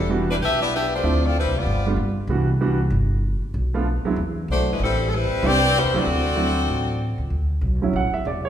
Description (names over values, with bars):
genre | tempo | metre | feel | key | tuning
jazz, big band swing | 191 BPM | 4/4 | swing 62% on 8ths | unclear | A4 = 440 Hz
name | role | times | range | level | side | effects
edgy saxophone section | melody | 0.0-1.9, 4.5-7.0 s | G3 to E5 | -22 LUFS | left 2 dB | none
upright bass | bass | 0.0-8.5 s | E1 to G2 | -23 LUFS | equal | none
clear upright piano | accompaniment | 0.1-8.5 s | E3 to F#5 | -25 LUFS | right 3 dB | none
room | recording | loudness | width
wet recital hall reverb, RT60 1.6 s | recorded in a church or concert hall | -19 LUFS | side -10 dB against mid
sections
0.0-7.3 A section; 7.3-8.5 B section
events
upright piano solo 7.3-8.5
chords
0.0 Em7; 1.0 Dm7; 1.7 G7; 2.3 Cmaj9#11; 3.5 Bm7b5; 4.2 E7(no3); 4.8 Am11; 6.1 D7; 7.3 Dmaj7